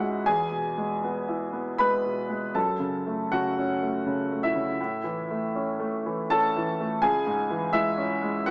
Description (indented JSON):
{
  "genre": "neoclassical minimalist piano",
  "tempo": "80 BPM",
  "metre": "3/4",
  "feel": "rubato",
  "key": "F# minor",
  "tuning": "A4 = 440 Hz",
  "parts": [
    { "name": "clear upright piano", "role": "solo", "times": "0.0-8.5 s", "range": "C#2 to B5", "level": "-24 LUFS", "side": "equal", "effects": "none" }
  ],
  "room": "moderate scoring stage reverb, RT60 1.6 s",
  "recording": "small speaker sound",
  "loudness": "-24 LUFS",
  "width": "side -30 dB against mid",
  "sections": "0.0-8.5 A section",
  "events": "none",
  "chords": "0.3 E; 2.6 F#m; 4.8 A; 7.0 C#m"
}